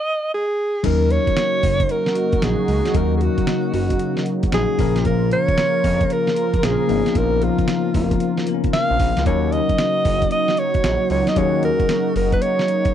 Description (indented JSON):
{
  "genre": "R&B, new jack swing",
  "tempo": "114 BPM",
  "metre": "4/4",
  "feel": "swing 65% on 16ths",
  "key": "Eb minor",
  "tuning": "A4 = 440 Hz",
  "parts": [
    { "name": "mellow alto saxophone", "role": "melody", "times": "0.0-12.9 s", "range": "F4 to F5", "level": "-21 LUFS", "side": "right 2 dB", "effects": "slapback echo" },
    { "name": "bell-like tine electric piano", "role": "accompaniment", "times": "0.8-12.9 s", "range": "F3 to Bb4", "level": "-24 LUFS", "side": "left 16 dB", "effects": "none" },
    { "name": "warm analog pad", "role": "sustained chords", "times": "0.8-12.9 s", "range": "Db3 to Bb4", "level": "-24 LUFS", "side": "right 2 dB", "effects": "chorus" },
    { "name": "smooth synth bass", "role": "bass", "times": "0.8-12.4 s", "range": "F1 to F2", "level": "-22 LUFS", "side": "right 1 dB", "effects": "none" },
    { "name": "dusty soul sampler-style drum kit", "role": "drums", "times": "0.8-12.9 s", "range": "crash cymbal, hi-hat, kick drum, snare drum", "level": "-23 LUFS", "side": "right 1 dB", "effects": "none" }
  ],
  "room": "light reverb",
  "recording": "dry, close 1970s-style studio recording",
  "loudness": "-16 LUFS",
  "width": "side -10 dB against mid",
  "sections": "0.8-12.9 A section",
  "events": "stop 0.0-0.8",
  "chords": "0.0 N.C.; 0.8 Ebm7; 4.8 Bbm; 9.3 Ebm7"
}